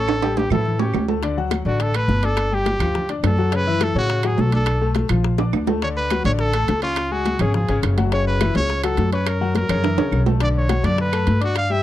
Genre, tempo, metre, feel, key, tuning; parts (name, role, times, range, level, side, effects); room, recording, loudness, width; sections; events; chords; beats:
latin, salsa; 209 BPM; 4/4; straight; A4 = 440 Hz
clear trumpet; melody; 0.0-11.8 s; F4 to F5; -24 LUFS; right 1 dB
bright concert grand piano; accompaniment; 0.0-11.8 s; C#3 to D6; -25 LUFS; left 6 dB
upright bass; bass; 0.0-11.8 s; F#1 to A2; -21 LUFS; equal
claves; percussion; 0.1-11.7 s; -35 LUFS; right 22 dB
congas; percussion; 0.1-11.8 s; -27 LUFS; left 1 dB
timbales; percussion; 0.1-11.7 s; -26 LUFS; right 10 dB
bongos; percussion; 1.2-11.7 s; -28 LUFS; left 10 dB
little or no reverb; dry, close 1970s-style studio recording; -17 LUFS; side -13 dB against mid
0.0-5.8 A section; 5.8-11.8 B section
drum fill 0.1-1.2, 5.4-5.8, 9.8-10.4
0.1 A7; 1.2 D6; 2.4 G5; 3.5 F#m7; 4.7 Bm7; 5.2 Bb; 5.8 Dmaj7; 7.0 C#; 8.1 F#m7; 9.3 F#7; 10.4 Bm7
| 0.08 0.36 0.65 0.94 | 1.23 1.51 1.80 2.09 | 2.38 2.66 2.95 3.24 | 3.52 3.81 4.10 4.38 | 4.67 4.96 5.25 5.53 | 5.82 6.11 6.40 6.68 | 6.97 7.26 7.54 7.83 | 8.12 8.40 8.69 8.98 | 9.27 9.55 9.84 10.13 | 10.41 10.70 10.99 11.27 | 11.56